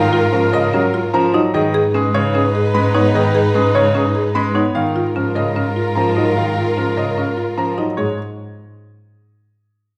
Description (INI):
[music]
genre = classical, minimalist pattern music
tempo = 149 BPM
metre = 4/4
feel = straight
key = unclear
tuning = A4 = 442 Hz
[part]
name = bright grand piano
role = melody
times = 0.0-8.2 s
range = G#4 to B5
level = -24 LUFS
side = equal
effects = none
[part]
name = mellow clarinet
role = second line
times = 0.0-7.7 s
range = A#4 to B4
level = -27 LUFS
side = equal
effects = none
[part]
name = clear concert grand piano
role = accompaniment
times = 0.0-8.2 s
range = C#3 to B3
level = -24 LUFS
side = equal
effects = none
[part]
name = rich chamber string section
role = sustained chords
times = 0.0-7.7 s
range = D#4 to B4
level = -25 LUFS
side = equal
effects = none
[part]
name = buzzing marimba with medium mallets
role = arpeggios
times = 0.0-8.2 s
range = C#4 to C#5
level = -23 LUFS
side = equal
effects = none
[part]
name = warm double bass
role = bass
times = 0.0-8.2 s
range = G#2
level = -24 LUFS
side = equal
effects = none
[sound]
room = wet recital hall reverb, RT60 1.4 s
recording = none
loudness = -17 LUFS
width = mono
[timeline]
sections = 0.0-8.0 A section; 8.0-9.6 B section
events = none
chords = 0.0 F#maj7/G#; 1.5 G#m; 4.8 F#maj7/G#; 8.0 N.C.